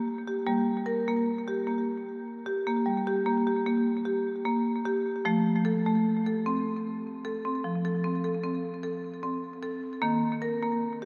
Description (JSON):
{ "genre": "world meditative", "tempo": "75 BPM", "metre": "3/4", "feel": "straight", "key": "G minor", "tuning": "A4 = 440 Hz", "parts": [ { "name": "marimba with hard mallets", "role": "solo", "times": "0.0-11.1 s", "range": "Eb3 to Bb4", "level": "-29 LUFS", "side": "equal", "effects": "delay" } ], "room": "wet cathedral reverb, RT60 5.4 s", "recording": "dreamy mix soaked in reverb", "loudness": "-29 LUFS", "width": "mono", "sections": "0.5-11.1 A section", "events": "none", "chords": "0.5 Gm; 5.2 F; 10.0 Eb5" }